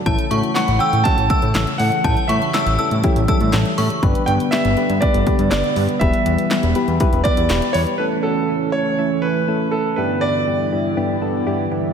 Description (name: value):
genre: synth-pop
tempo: 121 BPM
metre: 4/4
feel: straight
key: unclear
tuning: A4 = 440 Hz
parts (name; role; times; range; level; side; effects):
- chorused pulse-width pad; sustained chords; 0.0-11.9 s; G2 to E4; -23 LUFS; equal; none
- synth chime; second line; 0.1-3.8 s; A5 to E6; -23 LUFS; left 1 dB; ensemble chorus, tremolo, diffuse ambient delay
- soft electric-piano-like synth keys; accompaniment; 0.1-11.9 s; G2 to B4; -23 LUFS; left 2 dB; chorus
- fat analog bass; bass; 0.1-7.9 s; E1 to A2; -20 LUFS; equal; none
- punchy analog drum machine; drums; 0.1-8.0 s; handclaps, hi-hat, kick drum, snare drum; -21 LUFS; equal; none
- clear concert grand piano; melody; 0.5-11.7 s; A4 to A5; -22 LUFS; right 3 dB; diffuse ambient delay
room: wet lush hall reverb, RT60 2.2 s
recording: dreamy mix soaked in reverb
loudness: -16 LUFS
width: side -7 dB against mid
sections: 0.0-8.0 A section; 8.0-11.9 B section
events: none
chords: 0.1 A; 4.0 G; 6.0 Em; 8.0 A; 10.0 Em7/G